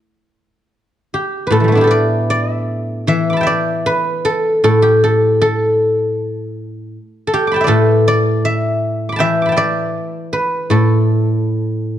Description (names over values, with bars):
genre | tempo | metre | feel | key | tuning
chinese traditional, Chinese solo plucked strings | 78 BPM | 4/4 | rubato | A shang mode | A4 = 440 Hz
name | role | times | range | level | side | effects
guzheng | solo | 0.0-12.0 s | A2 to D6 | -13 LUFS | equal | none
room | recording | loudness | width
moderate recital hall reverb, RT60 1.6 s | dark, warm production | -13 LUFS | side -11 dB against mid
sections
0.0-1.5 A section; 1.5-12.0 B section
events
none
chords
none